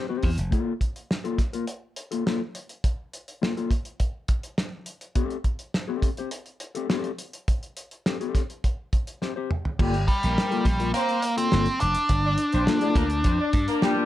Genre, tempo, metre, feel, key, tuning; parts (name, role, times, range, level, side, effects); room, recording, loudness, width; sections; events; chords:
funk; 104 BPM; 4/4; straight; G minor; A4 = 441 Hz
mellow electric guitar; accompaniment; 0.0-14.1 s; Bb3 to C5; -28 LUFS; left 5 dB
slap bass; bass; 0.2-0.5, 9.8-13.7 s; F1 to G2; -26 LUFS; equal
cloth-damped thuddy drum kit; drums; 0.2-14.0 s; crash cymbal, hi-hat, kick drum, snare drum, toms; -26 LUFS; equal
clear horn section; second line; 9.8-14.1 s; G3 to D5; -30 LUFS; left 2 dB
nasal lead guitar with a parked wah; melody; 10.1-14.1 s; G3 to D4; -24 LUFS; equal; overdrive, plate reverb
light reverb; dark, warm production; -23 LUFS; side -14 dB against mid
0.5-9.8 A section; 9.8-14.1 B section
drum fill 9.2-9.8
0.0 Am7 (rootless); 0.5 Bb5; 5.2 Am7; 9.8 Gm9